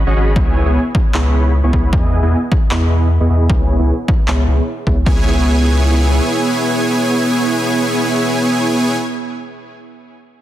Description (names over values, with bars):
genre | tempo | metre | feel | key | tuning
future bass | 153 BPM | 4/4 | half-time | C# minor | A4 = 437 Hz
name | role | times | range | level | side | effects
saturated sub bass | bass | 0.0-6.2 s | G#1 to E2 | -14 LUFS | equal | tube saturation, sidechain pumping
dense compressed supersaw | riff | 0.1-9.0 s | B3 to C#6 | -16 LUFS | right 1 dB | sidechain pumping, low-pass filter, tape echo
electronic kick drum | drums | 0.4-5.2 s | none | -16 LUFS | equal | overdrive
electronic handclaps | drums | 1.1-4.4 s | none | -25 LUFS | equal | overdrive
room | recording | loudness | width
light reverb, digital ambience | dense, heavily limited modern master | -12 LUFS | side -13 dB against mid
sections
0.0-5.1 A section; 5.1-8.2 B section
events
filter sweep on supersaw synth 0.0-5.1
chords
0.4 C#m7; 1.9 Emaj7; 3.5 C#m7